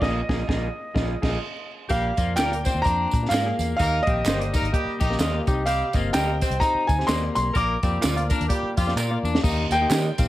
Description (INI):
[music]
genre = uptempo 1960s-style soul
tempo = 127 BPM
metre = 4/4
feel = swing 59% on 8ths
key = unclear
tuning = A4 = 439 Hz
[part]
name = clear baby grand piano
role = melody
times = 0.0-10.3 s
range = Eb5 to D6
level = -26 LUFS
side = equal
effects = none
[part]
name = barky reed electric piano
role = accompaniment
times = 0.0-10.3 s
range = Bb2 to F5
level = -31 LUFS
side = left 2 dB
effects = overdrive
[part]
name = electric guitar through a small old amp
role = stabs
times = 0.0-10.1 s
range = F4 to Eb5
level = -33 LUFS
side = right 4 dB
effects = slapback echo
[part]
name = vintage muted fingered electric bass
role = bass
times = 0.0-10.3 s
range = G1 to Eb3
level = -27 LUFS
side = equal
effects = none
[part]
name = compact cocktail drum kit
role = drums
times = 0.0-10.3 s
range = crash cymbal, hi-hat, kick drum, snare drum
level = -25 LUFS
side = equal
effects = none
[part]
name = warm horn section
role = second line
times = 1.9-8.9 s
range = Eb3 to C5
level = -31 LUFS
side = right 1 dB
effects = none
[part]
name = electric guitar at the edge of break-up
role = riff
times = 1.9-10.3 s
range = Bb3 to G4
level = -32 LUFS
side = left 5 dB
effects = none
[part]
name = tambourine and handclaps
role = percussion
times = 1.9-10.3 s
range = none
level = -35 LUFS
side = right 3 dB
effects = none
[sound]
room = light reverb, studio reverb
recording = vinyl crackle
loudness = -20 LUFS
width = side -15 dB against mid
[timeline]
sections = 0.0-1.9 A section; 1.9-9.4 B section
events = band accent 0.0-1.9; drum fill 9.0-9.4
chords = 0.0 Bb7sus4; 1.9 Bb; 3.8 Eb; 5.4 Cm; 7.6 Bb; 9.4 Eb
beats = | 0.02 0.49 0.96 1.43 | 1.90 2.37 2.85 3.32 | 3.79 4.26 4.73 5.20 | 5.67 6.14 6.62 7.09 | 7.56 8.03 8.50 8.97 | 9.44 9.91